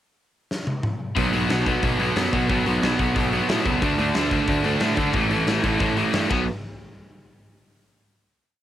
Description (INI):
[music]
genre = punk rock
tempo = 180 BPM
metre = 4/4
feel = straight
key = B minor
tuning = A4 = 437 Hz
[part]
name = big rock drum kit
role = drums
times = 0.5-6.4 s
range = crash cymbal, hi-hat, kick drum, snare drum, toms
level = -27 LUFS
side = left 1 dB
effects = cassette tape
[part]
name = crunchy overdriven guitar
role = riff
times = 1.2-6.4 s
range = A2 to D4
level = -24 LUFS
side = left 8 dB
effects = cassette tape
[part]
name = overdriven semi-hollow guitar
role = riff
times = 1.2-6.4 s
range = A2 to D4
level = -24 LUFS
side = right 6 dB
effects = cassette tape
[part]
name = fuzz picked electric bass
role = bass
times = 1.2-6.5 s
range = A1 to D3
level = -26 LUFS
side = left 1 dB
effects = overdrive
[sound]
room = light reverb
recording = home recording on cassette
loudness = -20 LUFS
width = side -12 dB against mid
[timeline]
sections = 0.0-1.2 pickup bar; 1.2-6.5 verse; 6.5-7.8 final hit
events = drum fill 0.5-1.2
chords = 0.0 N.C.; 1.2 B5; 3.8 D5; 5.1 A5; 6.3 B5; 6.5 N.C.